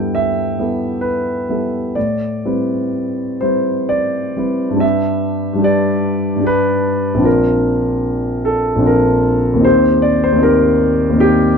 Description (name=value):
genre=classical, impressionist solo piano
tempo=61-78 BPM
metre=3/4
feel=rubato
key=G mixolydian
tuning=A4 = 440 Hz
part: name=warm concert grand piano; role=solo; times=0.0-11.6 s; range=Bb1 to G5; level=-13 LUFS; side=equal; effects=none
room=moderate studio reverb, RT60 0.6 s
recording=dark, warm production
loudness=-13 LUFS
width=side -6 dB against mid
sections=0.0-4.8 A section; 4.8-11.6 A section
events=none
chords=0.0 G69; 2.0 Am11; 4.8 G6; 7.3 Bbadd9; 9.6 Eb6